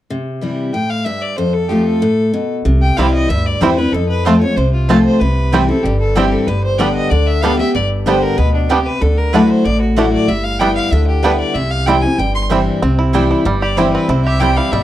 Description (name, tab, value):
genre	bluegrass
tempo	189 BPM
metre	4/4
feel	straight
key	C major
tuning	A4 = 440 Hz
part	picked steel-string acoustic guitar	accompaniment	0.1-14.8 s	F2 to G4	-16 LUFS	left 2 dB	none
part	clear fiddle	melody	0.7-14.8 s	D4 to C6	-20 LUFS	equal	none
part	upright bass	bass	2.7-14.8 s	G1 to F2	-17 LUFS	equal	none
part	bluegrass banjo	arpeggios	3.0-14.8 s	G3 to G4	-20 LUFS	right 4 dB	none
part	mandolin	stabs	3.0-14.5 s	A3 to A5	-21 LUFS	right 7 dB	none
room	small room ambience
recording	dry, close 1970s-style studio recording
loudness	-12 LUFS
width	side -13 dB against mid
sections	0.1-2.7 A section; 2.7-12.8 B section; 12.8-14.8 C section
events	none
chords	0.1 C; 1.4 F; 2.7 C; 3.9 F; 5.2 C; 6.5 G; 9.0 Dadd9; 10.3 G6; 11.6 C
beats	| 0.10 0.42 0.74 1.06 | 1.38 1.70 2.02 2.34 | 2.66 2.98 3.29 3.61 | 3.93 4.25 4.57 4.89 | 5.21 5.52 5.84 6.16 | 6.48 6.79 7.11 7.43 | 7.75 8.07 8.38 8.70 | 9.02 9.34 9.65 9.97 | 10.29 10.60 10.92 11.24 | 11.55 11.87 12.19 12.51 | 12.82 13.14 13.46 13.77 | 14.09 14.41 14.72